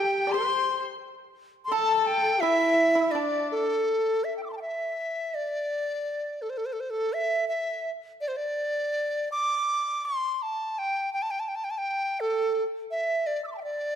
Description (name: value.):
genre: chinese traditional, Chinese chamber ensemble.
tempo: 83 BPM.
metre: 2/4.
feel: rubato.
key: D shang mode.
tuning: A4 = 440 Hz.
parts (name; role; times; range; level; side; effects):
bright reedy large dizi; melody; 0.0-14.0 s; A4 to E6; -26 LUFS; equal; none.
bright horsehead fiddle; second line; 0.0-3.7 s; D4 to C5; -29 LUFS; left 2 dB; none.
dark erhu; second line; 0.0-3.7 s; D5 to C6; -31 LUFS; left 8 dB; none.
pipa; second line; 0.0-3.6 s; D4 to D5; -33 LUFS; right 6 dB; none.
room: moderate concert hall reverb, RT60 2.1 s.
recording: none.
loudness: -25 LUFS.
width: side -9 dB against mid.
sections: 0.0-3.9 A section; 3.9-14.0 B section.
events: none.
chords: none.